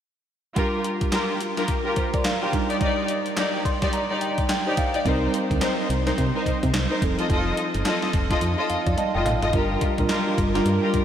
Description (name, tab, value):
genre	R&B, new jack swing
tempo	107 BPM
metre	4/4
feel	swing 61% on 16ths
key	G minor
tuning	A4 = 439 Hz
part	mellow tine electric piano	accompaniment	0.6-11.0 s	F3 to C6	-26 LUFS	right 2 dB	medium stereo tremolo
part	warm studio string section	stabs	0.6-11.0 s	Eb4 to Eb5	-25 LUFS	left 2 dB	analog delay
part	gated 80s digital drum machine	drums	0.6-11.0 s	handclaps, hi-hat, kick drum, snare drum, toms	-26 LUFS	equal	gated reverb, gated reverb snare, overdrive
part	solid FM bass	bass	5.1-11.0 s	F1 to C3	-26 LUFS	equal	none
room	wet huge ambient reverb, RT60 7.0 s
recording	dreamy mix soaked in reverb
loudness	-21 LUFS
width	side -9 dB against mid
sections	0.6-9.5 A section; 9.5-11.0 B section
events	tine electric piano fill 3.4-5.1, 8.4-9.5; drum fill 9.0-9.5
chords	0.6 Gm7; 2.5 Ebmaj7; 5.1 Cm7; 7.0 F7; 9.5 Gm7